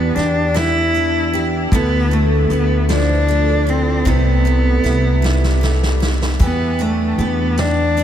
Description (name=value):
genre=six-eight pop ballad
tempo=51 BPM (dotted quarters)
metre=6/8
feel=straight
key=unclear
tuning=A4 = 440 Hz
part: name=rich cello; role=melody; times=0.0-8.0 s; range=A3 to E4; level=-18 LUFS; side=equal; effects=analog delay
part: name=picked steel-string acoustic guitar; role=accompaniment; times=0.0-8.0 s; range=C3 to G4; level=-22 LUFS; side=equal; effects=double-tracked left and right
part: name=upright bass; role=bass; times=0.0-8.0 s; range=C2 to E2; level=-17 LUFS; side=equal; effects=none
part: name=vintage brush drum kit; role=drums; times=0.2-8.0 s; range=hi-hat, kick drum, snare drum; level=-22 LUFS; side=equal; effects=none
room=light reverb, small room ambience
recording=none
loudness=-14 LUFS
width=side -10 dB against mid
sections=0.0-8.0 A section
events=drum fill 5.2-6.4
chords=0.0 Em7; 1.7 Dmadd9; 4.1 C6; 6.4 Em7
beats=0.55 | 1.72 2.89 | 4.06 5.23 | 6.40 7.57